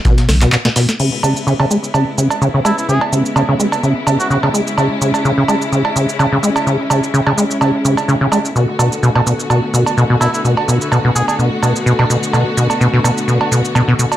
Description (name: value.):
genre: acid house.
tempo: 127 BPM.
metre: 4/4.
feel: swing 54% on 16ths.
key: C# phrygian.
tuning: A4 = 440 Hz.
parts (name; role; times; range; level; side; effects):
dusty soul sampler-style drum kit; drums; 0.0-1.0 s; hi-hat, snare drum; -26 LUFS; left 1 dB; high-pass filter on hats, small room ambience, high-pass filter on snare.
acid bass, saw; riff; 0.1-14.1 s; B2 to G#3; -14 LUFS; equal; lush chorus, sidechain pumping, ping-pong delay.
booming analog drum machine; drums; 0.1-14.2 s; cowbell, crash cymbal, handclaps, hi-hat, rim click, shaker, snare drum; -19 LUFS; right 4 dB; small room ambience.
saturated sub bass; bass; 0.3-0.5 s; B1; -13 LUFS; equal; sidechain pumping.
rich studio string section; sustained chords; 1.0-14.2 s; C#3 to F#4; -20 LUFS; left 1 dB; sidechain pumping.
trumpet with cup mute; melody; 2.7-4.4, 10.2-11.3 s; E4 to G#4; -22 LUFS; equal; digital delay.
room: wet studio reverb, RT60 0.6 s.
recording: none.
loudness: -12 LUFS.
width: side -12 dB against mid.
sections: 1.0-14.2 A section.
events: break 0.5-1.0; filter sweep on acid bass 1.0-14.2.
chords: 0.0 N.C.; 1.0 C#m7; 8.6 Bm7.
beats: 0.05 0.52 | 1.00 1.47 1.94 2.41 | 2.88 3.36 3.83 4.30 | 4.78 5.25 5.72 6.19 | 6.67 7.14 7.61 8.08 | 8.55 9.03 9.50 9.97 | 10.44 10.92 11.39 11.86 | 12.33 12.81 13.28 13.75.